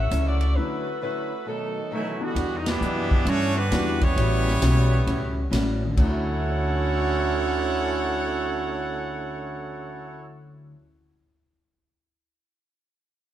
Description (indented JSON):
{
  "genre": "jazz, big band swing",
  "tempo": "133 BPM",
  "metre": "4/4",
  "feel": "swing 65% on 8ths",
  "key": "D major",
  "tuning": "A4 = 440 Hz",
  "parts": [
    { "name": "warm saxophone section", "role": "melody", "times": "0.0-2.2 s", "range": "F#3 to E5", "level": "-30 LUFS", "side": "left 1 dB", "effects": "none" },
    { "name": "upright bass", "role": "bass", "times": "0.0-10.8 s", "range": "A1 to G2", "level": "-25 LUFS", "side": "equal", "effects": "none" },
    { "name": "picked old ladder-braced acoustic guitar", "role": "accompaniment", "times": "0.1-11.0 s", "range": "A2 to F#4", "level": "-35 LUFS", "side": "left 2 dB", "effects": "none" },
    { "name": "swinging big-band drum kit", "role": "drums", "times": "0.1-6.1 s", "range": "crash cymbal, hi-hat, kick drum, ride cymbal, snare drum", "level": "-27 LUFS", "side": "equal", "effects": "none" },
    { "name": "warm grand piano", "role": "accompaniment", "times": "0.6-11.3 s", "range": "D2 to E6", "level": "-34 LUFS", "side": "left 2 dB", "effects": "none" },
    { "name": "clear trombone section", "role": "second line", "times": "1.5-10.3 s", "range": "B2 to F#4", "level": "-29 LUFS", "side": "right 4 dB", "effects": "none" },
    { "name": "brilliant trumpet section", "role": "melody", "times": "1.9-10.3 s", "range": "F#3 to F#5", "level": "-28 LUFS", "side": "right 1 dB", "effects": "none" }
  ],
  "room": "moderate echo chamber reverb, RT60 1.4 s",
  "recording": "heard from further back in the room",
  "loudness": "-22 LUFS",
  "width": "side -12 dB against mid",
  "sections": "0.0-2.4 A section; 2.4-6.0 B section; 6.0-9.6 C section",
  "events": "break 0.6-2.4; band accent 2.6",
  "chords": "0.0 Dmaj9; 1.5 B7; 2.4 Em9; 4.2 A13; 6.0 Dmaj9",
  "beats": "0.11 | 0.56 1.01 1.47 1.92 | 2.37 2.81 3.27 3.71 | 4.17 4.62 5.07 5.51 | 5.96 6.42 6.87 7.32 | 7.76 8.21 8.66 9.12"
}